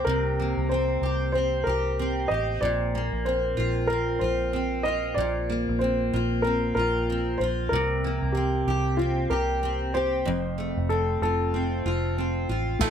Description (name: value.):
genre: acoustic pop.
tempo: 94 BPM.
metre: 4/4.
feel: swing 60% on 16ths.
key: unclear.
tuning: A4 = 439 Hz.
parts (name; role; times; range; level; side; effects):
dark upright piano; melody; 0.0-12.9 s; F4 to Eb5; -27 LUFS; left 1 dB; plate reverb.
fingerpicked steel-string acoustic guitar; accompaniment; 0.0-12.9 s; F2 to G4; -27 LUFS; equal; double-tracked left and right, plate reverb.
vintage muted fingered electric bass; bass; 0.0-12.9 s; F1 to C2; -29 LUFS; equal; none.
felt-muted upright piano; accompaniment; 12.8-12.9 s; A3 to F4; -29 LUFS; left 6 dB; none.
mandolin; arpeggios; 12.8-12.9 s; A3; -26 LUFS; right 11 dB; none.
jazz brush drum kit; drums; 12.8-12.9 s; crash cymbal, kick drum; -24 LUFS; right 1 dB; none.
room: moderate studio reverb, RT60 0.6 s.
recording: none.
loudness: -23 LUFS.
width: side -8 dB against mid.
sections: 0.0-12.8 A section.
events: none.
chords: 0.0 C5; 2.6 Bbsus2; 7.7 C5; 10.3 F.